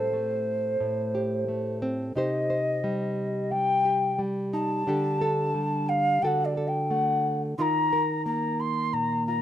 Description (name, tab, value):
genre	acoustic folk duo or small band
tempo	88 BPM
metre	4/4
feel	straight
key	unclear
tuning	A4 = 441 Hz
part	breathy alto ocarina	melody	0.0-9.4 s	C5 to C6	-26 LUFS	left 1 dB	none
part	nylon-string guitar	accompaniment	0.0-9.4 s	A2 to C5	-28 LUFS	equal	none
room	little or no reverb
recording	recorded outdoors, with no room sound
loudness	-24 LUFS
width	side -11 dB against mid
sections	0.0-9.4 A section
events	none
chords	0.0 Am7; 2.2 Cm; 4.9 Dsus4; 6.2 D; 7.6 Ebsus2